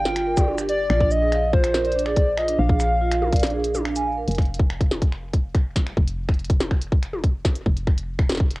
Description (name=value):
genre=IDM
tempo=142 BPM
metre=4/4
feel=straight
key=unclear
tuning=A4 = 440 Hz
part: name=warbly nostalgic lead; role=melody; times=0.0-3.9 s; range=C5 to G5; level=-23 LUFS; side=equal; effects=chorus, cassette tape, tape echo
part: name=woody FM bass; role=bass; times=0.0-8.6 s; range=F1 to Bb1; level=-27 LUFS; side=equal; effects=none
part: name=vibraphone with medium mallets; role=arpeggios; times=0.1-4.2 s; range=D4 to Ab5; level=-26 LUFS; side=right 2 dB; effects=cassette tape, tape echo
part: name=glitchy drum kit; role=drums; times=0.1-8.6 s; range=cabasa, finger snaps, hi-hat, snare drum, toms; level=-28 LUFS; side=left 1 dB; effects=cassette tape
part: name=electronic kick drum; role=drums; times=0.4-8.5 s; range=none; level=-19 LUFS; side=equal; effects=cassette tape
room=little or no reverb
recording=home recording on cassette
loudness=-19 LUFS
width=side -21 dB against mid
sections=0.0-4.3 A section; 4.3-8.6 B section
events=break 3.9-4.3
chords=0.0 G7(no3); 0.9 Bb; 4.3 N.C.